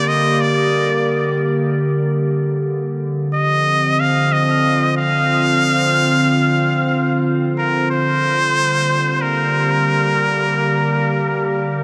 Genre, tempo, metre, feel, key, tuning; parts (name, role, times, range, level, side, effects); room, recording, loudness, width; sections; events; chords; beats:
ambient; free time; G minor; A4 = 440 Hz
trumpet with straight mute; melody; 0.0-11.8 s; Bb4 to F5; -20 LUFS; equal; dub echo
warbly tape-like pad; sustained chords; 0.0-11.8 s; D3 to C5; -20 LUFS; equal; chorus, built-in reverb
wet scoring stage reverb, RT60 1.6 s, small room ambience; -17 LUFS; mono
0.0-11.8 A section
0.0 Gm; 2.7 Dm7; 7.9 Gm
free time